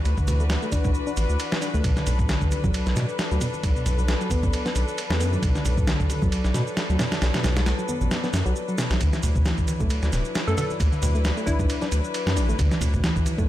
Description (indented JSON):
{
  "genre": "breakbeat, breaks",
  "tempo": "134 BPM",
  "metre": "4/4",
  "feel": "swing 56% on 16ths",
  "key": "B minor pentatonic",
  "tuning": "A4 = 439 Hz",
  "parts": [
    { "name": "dark studio string section", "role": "sustained chords", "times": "0.0-13.5 s", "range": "E3 to B4", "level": "-31 LUFS", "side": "left 3 dB", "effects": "sidechain pumping" },
    { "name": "saturated sub bass", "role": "bass", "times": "0.1-13.5 s", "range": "D1 to B2", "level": "-24 LUFS", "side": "equal", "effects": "none" },
    { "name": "dusty soul sampler-style drum kit", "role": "drums", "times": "0.1-13.5 s", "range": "kick drum, ride cymbal, snare drum", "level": "-25 LUFS", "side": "equal", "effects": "none" },
    { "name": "shaker", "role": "drums", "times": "0.1-13.5 s", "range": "none", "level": "-40 LUFS", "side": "right 3 dB", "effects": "none" },
    { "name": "reed electric piano", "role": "riff", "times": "0.2-13.5 s", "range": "A2 to D4", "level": "-29 LUFS", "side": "equal", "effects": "medium tremolo" },
    { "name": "congas", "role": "percussion", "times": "0.3-13.5 s", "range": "none", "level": "-34 LUFS", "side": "right 3 dB", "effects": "none" },
    { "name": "plucky unison lead", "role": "melody", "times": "10.5-11.8 s", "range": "E4 to A4", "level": "-33 LUFS", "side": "equal", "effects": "telephone sound, dub echo" }
  ],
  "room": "little or no reverb",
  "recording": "none",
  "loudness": "-21 LUFS",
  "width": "side -14 dB against mid",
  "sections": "0.0-13.5 A section",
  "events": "none",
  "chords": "0.0 D69",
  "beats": "| 0.05 0.50 0.95 1.40 | 1.84 2.29 2.74 3.19 | 3.63 4.08 4.53 4.98 | 5.43 5.87 6.32 6.77 | 7.22 7.66 8.11 8.56 | 9.01 9.46 9.90 10.35 | 10.80 11.25 11.69 12.14 | 12.59 13.04 13.48"
}